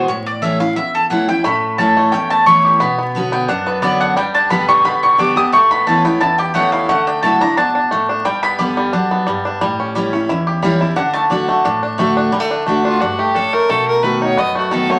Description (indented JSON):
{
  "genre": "bluegrass",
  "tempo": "176 BPM",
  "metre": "4/4",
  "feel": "straight",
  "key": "D major",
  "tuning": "A4 = 442 Hz",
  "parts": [
    { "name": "picked steel-string acoustic guitar", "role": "accompaniment", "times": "0.0-15.0 s", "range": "E2 to G4", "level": "-21 LUFS", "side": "equal", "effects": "none" },
    { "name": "mandolin", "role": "stabs", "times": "0.0-8.6, 11.0-11.2 s", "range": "A4 to Eb6", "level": "-17 LUFS", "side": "equal", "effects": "none" },
    { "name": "bluegrass banjo", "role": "melody", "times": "1.4-15.0 s", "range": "G3 to G4", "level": "-21 LUFS", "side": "equal", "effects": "none" },
    { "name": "clear fiddle", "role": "melody", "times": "12.7-15.0 s", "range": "D4 to D#5", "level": "-19 LUFS", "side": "equal", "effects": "none" }
  ],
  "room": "wet club reverb, RT60 0.9 s",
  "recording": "vinyl crackle",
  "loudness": "-15 LUFS",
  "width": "mono",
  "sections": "0.0-12.3 A section; 12.3-15.0 B section",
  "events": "mandolin solo 0.0-12.3",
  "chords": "0.1 A; 2.8 Bmadd9; 4.2 G; 5.5 Aadd9; 6.9 Dadd9; 8.3 G; 9.6 A7; 11.0 D; 13.7 B7"
}